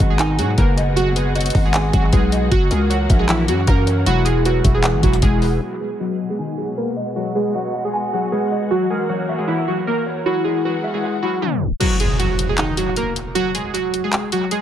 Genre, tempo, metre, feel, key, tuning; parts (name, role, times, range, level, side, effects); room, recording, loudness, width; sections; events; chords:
hip hop, trap; 155 BPM; 4/4; half-time; G# minor; A4 = 440 Hz
glassy digital keys; melody; 0.0-14.6 s; D#3 to A#4; -21 LUFS; right 1 dB; chorus, low-pass filter, dub echo
mellow electric guitar; accompaniment; 0.0-11.8 s; E4 to G#5; -24 LUFS; left 1 dB; analog chorus, low-pass filter, dub echo
dark symphonic string section; sustained chords; 0.0-11.8 s; B2 to F#4; -28 LUFS; left 1 dB; low-pass filter
growling 808-style bass; bass; 0.0-5.6 s; E1 to G#2; -18 LUFS; equal
trap drum kit; drums; 0.0-5.5, 11.8-14.6 s; crash cymbal, handclaps, hi-hat, kick drum; -19 LUFS; equal
impact; sound effects; 11.8-13.4 s; -23 LUFS; equal
little or no reverb; echo-heavy mix, tape stop; -16 LUFS; side -10 dB against mid
0.0-5.6 A section; 5.6-11.8 B section; 11.8-14.6 C section
filter sweep 5.6-11.8; tape stop 11.4-11.8; kick muted 11.8-14.6; impact 11.8-13.4
0.0 G#m7; 2.5 F#7; 4.1 Eadd9; 5.6 G#m7; 8.7 F#7; 10.3 Eadd9; 11.8 G#5